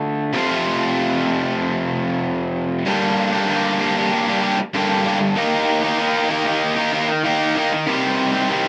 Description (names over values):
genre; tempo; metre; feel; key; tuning
rock; 96 BPM; 4/4; straight; G minor; A4 = 439 Hz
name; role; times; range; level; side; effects
raw garage guitar; solo; 0.0-8.7 s; F2 to G4; -20 LUFS; equal; overdrive
room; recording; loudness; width
moderate small room reverb, RT60 0.5 s; rough home demo mix; -19 LUFS; mono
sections
0.0-2.9 A section; 2.9-8.7 B section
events
none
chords
0.3 F; 2.9 Gm; 5.4 Eb; 7.9 Cm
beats
| 0.34 0.97 1.60 2.23 | 2.85 3.48 4.11 4.73 | 5.36 5.98 6.61 7.23 | 7.86 8.48